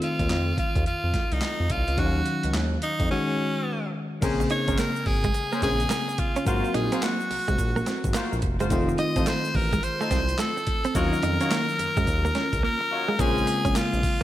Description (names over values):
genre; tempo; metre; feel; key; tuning
R&B, new jack swing; 107 BPM; 4/4; swing 63% on 16ths; Bb minor; A4 = 437 Hz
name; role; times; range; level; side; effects
raspy tenor saxophone; melody; 0.0-14.2 s; Db4 to Eb5; -28 LUFS; equal; none
FM electric piano; accompaniment; 0.0-14.2 s; Db3 to F5; -29 LUFS; left 2 dB; chorus, slapback echo
boom bap sampler-style drum kit; drums; 0.0-14.2 s; crash cymbal, handclaps, hi-hat, kick drum, snare drum, tambourine; -28 LUFS; equal; overdrive
smooth synth bass; bass; 0.2-14.0 s; F1 to Gb2; -28 LUFS; equal; none
warm horn section; stabs; 4.2-13.5 s; Db4 to Db5; -34 LUFS; left 2 dB; slapback echo, tape echo
tube shaker; percussion; 4.2-14.2 s; none; -45 LUFS; right 6 dB; none
direct-recorded clean electric guitar; riff; 4.4-14.2 s; Ab3 to Eb4; -31 LUFS; right 3 dB; wide subtle chorus
room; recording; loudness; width
moderate recital hall reverb, RT60 1.3 s, digital ambience; big arena sound; -22 LUFS; side -13 dB against mid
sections
0.0-4.2 A section; 4.2-13.2 B section; 13.2-14.2 C section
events
break 3.1-4.2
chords
0.0 F7; 2.0 Ebm9; 3.1 Ab7sus4; 4.2 Bbm9; 6.5 Ab13; 8.7 F7; 11.0 Ebm9; 13.2 Bbm9